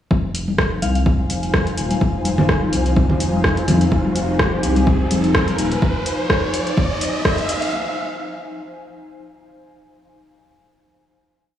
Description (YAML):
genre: minimal techno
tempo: 126 BPM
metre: 4/4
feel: swing 55% on 16ths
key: F minor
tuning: A4 = 439 Hz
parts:
  - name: round analog bass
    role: bass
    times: 0.1-5.8 s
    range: Eb1 to F2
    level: -22 LUFS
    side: equal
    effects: sidechain pumping
  - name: electronic kick drum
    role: drums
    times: 0.1-7.4 s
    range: none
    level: -19 LUFS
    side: equal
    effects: none
  - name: congas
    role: percussion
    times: 0.1-5.6 s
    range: none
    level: -23 LUFS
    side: left 1 dB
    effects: tape echo
  - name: riser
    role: sound effects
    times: 1.5-7.7 s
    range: none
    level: -26 LUFS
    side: equal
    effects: none
  - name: ethereal airy pad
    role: texture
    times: 0.7-7.7 s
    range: Eb4 to Ab5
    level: -26 LUFS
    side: left 1 dB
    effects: ensemble chorus, built-in reverb, sidechain pumping
  - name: swarming drone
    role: texture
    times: 1.3-5.8 s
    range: F3 to F4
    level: -30 LUFS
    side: left 2 dB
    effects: none
  - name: techno drum kit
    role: drums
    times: 0.3-7.7 s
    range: hi-hat, rim click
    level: -23 LUFS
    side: equal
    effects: none
  - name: soft synth bell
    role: melody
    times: 0.8-1.0 s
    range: F5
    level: -31 LUFS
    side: left 5 dB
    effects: chorus, low-pass filter, tape echo
room: moderate plate reverb, RT60 1.2 s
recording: played on a big sound system in a bare room, stone room reverb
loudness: -16 LUFS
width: side -11 dB against mid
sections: 0.1-7.7 build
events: build-up 0.1-7.7; riser 1.5-7.7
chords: 0.1 Fm7